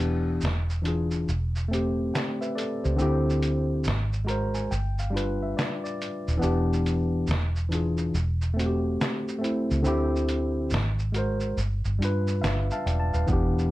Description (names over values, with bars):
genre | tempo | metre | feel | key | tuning
lo-fi hip hop | 70 BPM | 4/4 | swing 65% on 16ths | A minor | A4 = 441 Hz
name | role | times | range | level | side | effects
tine electric piano | accompaniment | 0.0-13.7 s | D3 to A#5 | -27 LUFS | left 1 dB | overdrive, low-pass filter
vintage muted fingered electric bass | bass | 0.0-13.7 s | D#1 to G2 | -26 LUFS | equal | none
lo-fi sampler-style drum kit | drums | 0.0-13.7 s | handclaps, hi-hat, kick drum, shaker, snare drum | -32 LUFS | equal | none
room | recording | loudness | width
moderate studio reverb, RT60 0.5 s | dark, warm production | -24 LUFS | side -17 dB against mid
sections
0.0-13.7 A section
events
break 0.0-13.3; tine electric piano fill 3.9-6.4, 12.0-13.3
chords
0.4 E7b9; 1.3 Am7/E; 3.0 D9sus4; 3.9 G#9; 4.7 G7; 6.4 Em7; 7.3 E7b9; 8.1 Am7/E; 9.9 D9sus4; 10.7 G#9; 11.6 G7